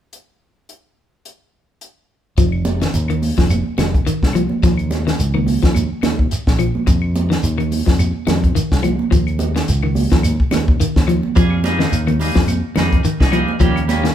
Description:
afrobeat; 107 BPM; 4/4; swing 56% on 16ths; F minor; A4 = 440 Hz
compact cocktail drum kit; drums; 0.1-14.1 s; hi-hat, kick drum, snare drum; -18 LUFS; equal
clean electric guitar; arpeggios; 2.4-14.1 s; Eb3 to F3; -21 LUFS; left 2 dB; warbly pitch drift
fingered electric bass; bass; 2.4-14.1 s; F1 to F2; -20 LUFS; equal
shekere; percussion; 2.4-14.0 s; -24 LUFS; right 2 dB
claves; percussion; 2.5-13.9 s; -34 LUFS; left 6 dB
congas; percussion; 2.6-14.0 s; -23 LUFS; right 4 dB
clean electric guitar; stabs; 11.4-14.1 s; G3 to Ab4; -22 LUFS; right 2 dB; spring reverb
light reverb; band playing live in one room; -14 LUFS; side -10 dB against mid
0.1-2.4 A section; 2.4-14.1 B section
0.1 N.C.; 2.4 F5; 4.6 Eb5; 6.9 F5; 9.1 Dbadd9; 11.4 Fm11; 13.6 Eb7

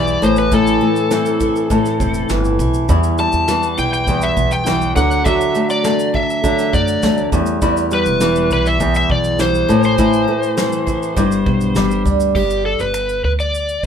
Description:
acoustic pop; 101 BPM; 4/4; straight; G major; A4 = 440 Hz
overdriven slide guitar; melody; 0.0-13.8 s; G4 to A5; -19 LUFS; left 1 dB
flamenco guitar; accompaniment; 0.0-12.9 s; E2 to F#4; -17 LUFS; left 2 dB
picked steel-string acoustic guitar; arpeggios; 0.0-12.9 s; E3 to E4; -23 LUFS; right 5 dB
upright bass; bass; 0.0-13.9 s; E1 to F#2; -21 LUFS; equal
soft brush drum kit; drums; 0.1-13.9 s; crash cymbal, finger snaps, kick drum, shaker, snare drum; -23 LUFS; equal
moderate studio ambience, RT60 0.5 s; band playing live in one room; -13 LUFS; side -8 dB against mid
0.0-12.4 A section; 12.4-13.9 B section
0.2 Am; 2.9 Em; 5.0 D; 7.3 Em; 9.7 Am; 11.2 G

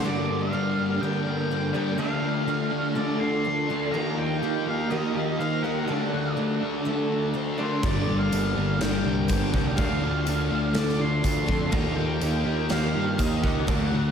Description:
rock, shoegaze and dream pop; 123 BPM; 4/4; straight; G minor; A4 = 440 Hz
octave-fuzz lead guitar; melody; 0.0-14.1 s; C5 to C6; -32 LUFS; equal; distortion, tape echo
deep dark ambient pad; sustained chords; 0.1-14.1 s; D4 to G5; -36 LUFS; equal; chorus, built-in reverb
picked twelve-string acoustic guitar; arpeggios; 0.0-14.1 s; F4 to D5; -36 LUFS; left 2 dB; ensemble chorus, tape echo
cranked stack guitar; riff; 0.0-14.1 s; G2 to Eb4; -32 LUFS; equal; overdrive, spring reverb
electric guitar through a small old amp; riff; 0.0-14.1 s; G2 to G4; -30 LUFS; right 8 dB; reverse reverb
thick fuzz guitar; riff; 0.0-14.1 s; G2 to Eb4; -29 LUFS; left 6 dB; distortion, lush chorus
fuzz picked electric bass; bass; 7.8-14.1 s; G1 to G2; -28 LUFS; equal; overdrive
gated 80s drum kit; drums; 7.8-13.8 s; crash cymbal, kick drum, snare drum; -29 LUFS; equal
tambourine; percussion; 8.3-13.3 s; -42 LUFS; right 9 dB
moderate lush hall reverb, RT60 2.0 s; dreamy mix soaked in reverb; -23 LUFS; side -7 dB against mid
0.0-14.1 A section
0.0 Gm; 2.0 Dm; 3.9 Ebadd9; 5.9 D; 7.8 Gm; 9.8 Dm; 11.7 Ebadd9

